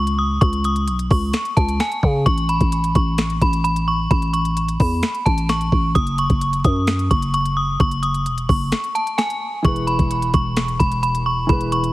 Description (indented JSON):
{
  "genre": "hip hop, trap",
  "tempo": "130 BPM",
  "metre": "4/4",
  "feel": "half-time",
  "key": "unclear",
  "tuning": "A4 = 440 Hz",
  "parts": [
    { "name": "metallic FM bell", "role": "melody", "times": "0.0-11.9 s", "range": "G#5 to D#6", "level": "-21 LUFS", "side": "equal", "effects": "chorus, low-pass filter, ping-pong delay" },
    { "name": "growling 808-style bass", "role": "bass", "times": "0.0-11.9 s", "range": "E1 to C#3", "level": "-20 LUFS", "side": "equal", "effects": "none" },
    { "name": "trap drum kit", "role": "drums", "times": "0.1-11.9 s", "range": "finger snaps, hi-hat, kick drum, snare drum", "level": "-20 LUFS", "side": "equal", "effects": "none" },
    { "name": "dark grand piano", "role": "accompaniment", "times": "9.6-11.9 s", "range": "E3 to B4", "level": "-26 LUFS", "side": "right 1 dB", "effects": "low-pass filter" }
  ],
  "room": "digital ambience",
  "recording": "heavily compressed radio sound, multiband compression, vinyl crackle",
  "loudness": "-17 LUFS",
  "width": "side -17 dB against mid",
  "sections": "0.0-11.9 A section",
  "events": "break 8.7-9.6",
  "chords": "0.0 N.C.; 2.3 A; 6.0 F#5; 9.6 E"
}